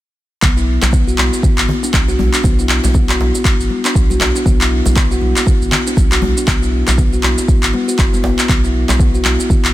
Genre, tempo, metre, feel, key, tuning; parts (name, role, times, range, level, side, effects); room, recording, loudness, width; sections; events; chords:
afro house; 119 BPM; 4/4; swing 58% on 16ths; B minor; A4 = 440 Hz
kalimba; arpeggios; 0.4-9.3 s; B3 to F#4; -19 LUFS; left 1 dB; sidechain pumping, tape echo
round analog bass; bass; 0.4-9.7 s; F#1 to B1; -17 LUFS; equal; sidechain pumping
electronic handclaps and shaker; drums; 0.4-9.7 s; -18 LUFS; equal; small room ambience
electronic kick drum; drums; 0.4-9.6 s; -14 LUFS; equal; small room ambience
congas; percussion; 0.4-9.6 s; -25 LUFS; left 2 dB
djembe; percussion; 0.4-9.5 s; -24 LUFS; right 1 dB
small room ambience; -11 LUFS; side -15 dB against mid
0.4-9.7 A section
0.4 B5